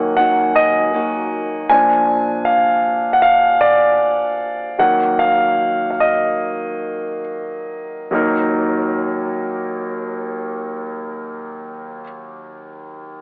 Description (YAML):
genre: pop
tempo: 68-79 BPM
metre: 4/4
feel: straight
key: Eb minor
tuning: A4 = 439 Hz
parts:
  - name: clear concert grand piano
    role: accompaniment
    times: 0.0-13.2 s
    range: Eb2 to Ab5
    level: -15 LUFS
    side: equal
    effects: cassette tape
  - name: nylon-string guitar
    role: arpeggios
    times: 0.0-2.2 s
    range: Eb3 to Gb4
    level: -25 LUFS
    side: left 1 dB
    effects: cassette tape
room: moderate spring reverb, RT60 1.4 s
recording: home recording on cassette, telephone sound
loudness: -14 LUFS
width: side -28 dB against mid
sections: 0.0-8.1 A section; 8.1-11.6 B section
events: grand piano solo 0.0-8.1; slowing down 1.7-8.1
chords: 0.0 Ebm; 1.7 Bb; 4.8 Ebm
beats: 0.17 0.93 | 1.69 2.46 3.22 4.00 | 4.79 5.59 6.41 7.25 | 8.11 8.99 9.86 10.74